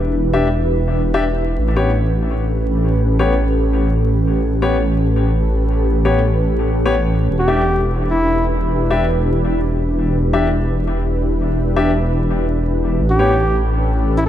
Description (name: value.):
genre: drum and bass.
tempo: 168 BPM.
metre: 4/4.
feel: straight.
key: E dorian.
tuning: A4 = 439 Hz.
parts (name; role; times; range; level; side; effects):
ethereal airy pad; sustained chords; 0.0-14.3 s; C#4 to B4; -21 LUFS; right 1 dB; ensemble chorus, built-in reverb, vintage 12-bit sampler grit.
detuned saw bass; bass; 0.0-14.3 s; E1 to A1; -17 LUFS; equal; none.
warm concert grand piano; stabs; 0.3-13.3 s; B3 to E5; -22 LUFS; left 4 dB; dub echo.
trumpet with bucket mute; melody; 7.4-8.5, 13.1-14.3 s; E4 to G4; -19 LUFS; equal; vintage 12-bit sampler grit, dub echo.
room: light reverb.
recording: vinyl crackle.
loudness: -15 LUFS.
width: side -11 dB against mid.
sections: 0.0-14.3 A section.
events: filter sweep on ambient pad 0.0-14.3.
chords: 0.0 Em7; 1.6 A9; 7.3 Em7; 13.0 A9.